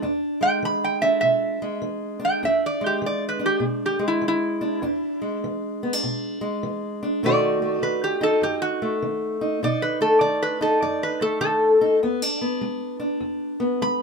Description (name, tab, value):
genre	acoustic country blues, solo or duo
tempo	100 BPM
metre	4/4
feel	swing 64% on 8ths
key	E mixolydian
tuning	A4 = 440 Hz
part	fingerpicked steel-string acoustic guitar	accompaniment	0.0-14.0 s	E2 to F#4	-25 LUFS	equal	none
part	metal-body resonator slide guitar	melody	0.4-14.0 s	E4 to B5	-21 LUFS	equal	none
room	moderate small room reverb, RT60 0.5 s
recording	minimal, uncompressed stereo recording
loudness	-21 LUFS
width	side -4 dB against mid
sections	0.0-14.0 A section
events	none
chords	0.0 E7; 7.2 B7; 12.0 E7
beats	| 0.03 0.63 1.23 1.83 | 2.43 3.03 3.63 4.23 | 4.83 5.43 6.03 6.63 | 7.23 7.83 8.42 9.02 | 9.62 10.22 10.82 11.42 | 12.01 12.61 13.21 13.80